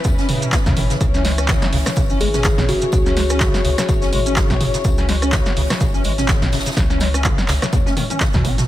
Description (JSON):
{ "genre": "acid house", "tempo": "125 BPM", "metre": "4/4", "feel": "swing 56% on 16ths", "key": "C# minor", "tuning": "A4 = 439 Hz", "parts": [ { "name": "dark chamber string section", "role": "sustained chords", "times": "0.0-8.6 s", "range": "E3 to C#5", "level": "-26 LUFS", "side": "left 4 dB", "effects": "sidechain pumping" }, { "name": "acid bass, square", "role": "riff", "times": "0.0-8.6 s", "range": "B2 to C#4", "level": "-24 LUFS", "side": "equal", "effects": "tube saturation, ensemble chorus, sidechain pumping, digital delay" }, { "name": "round analog bass", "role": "bass", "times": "0.0-8.6 s", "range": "G#1 to E2", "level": "-22 LUFS", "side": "equal", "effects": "sidechain pumping" }, { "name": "electronic kick drum", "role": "drums", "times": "0.0-8.4 s", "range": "none", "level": "-19 LUFS", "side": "equal", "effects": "none" }, { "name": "punchy analog drum machine", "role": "drums", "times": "0.0-8.7 s", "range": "handclaps, hi-hat, rim click, snare drum, toms", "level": "-22 LUFS", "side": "equal", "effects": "none" }, { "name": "swinging big-band drum kit", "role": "drums", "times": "0.0-8.7 s", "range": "hi-hat, snare drum, tambourine", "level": "-33 LUFS", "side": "equal", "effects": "sidechain pumping on hats, high-pass filter on hats, high-pass filter on snare, sidechain pumping on perc, high-pass filter on perc, high-pass filter on room" }, { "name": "maracas", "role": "percussion", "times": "0.0-8.7 s", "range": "none", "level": "-31 LUFS", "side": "right 3 dB", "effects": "none" }, { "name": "kalimba", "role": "melody", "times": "2.2-3.1 s", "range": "F#4 to G#4", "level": "-25 LUFS", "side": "equal", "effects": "digital delay" } ], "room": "small room ambience", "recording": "none", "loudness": "-15 LUFS", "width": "side -14 dB against mid", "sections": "0.0-8.7 A section", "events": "drop 0.0-8.7; drum fill 7.7-8.7", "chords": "0.0 C#m7" }